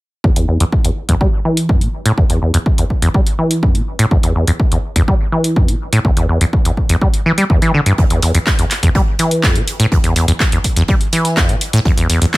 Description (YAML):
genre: acid house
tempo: 124 BPM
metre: 4/4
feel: straight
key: E minor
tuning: A4 = 440 Hz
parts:
  - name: acid bass, saw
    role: riff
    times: 0.2-12.3 s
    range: E2 to G3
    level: -15 LUFS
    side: equal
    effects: dub echo
  - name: electronic kick drum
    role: drums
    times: 0.2-12.4 s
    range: none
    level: -15 LUFS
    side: equal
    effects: none
  - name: punchy analog drum machine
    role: drums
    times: 0.4-12.4 s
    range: handclaps, hi-hat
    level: -19 LUFS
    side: left 1 dB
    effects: none
  - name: swinging big-band drum kit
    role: drums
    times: 8.0-12.4 s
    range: hi-hat, snare drum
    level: -29 LUFS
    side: right 4 dB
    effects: high-pass filter on hats, high-pass filter on snare, high-pass filter on room
room: light reverb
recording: none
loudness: -12 LUFS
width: side -20 dB against mid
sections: 0.2-12.4 A section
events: filter sweep on acid bass 0.2-12.4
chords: none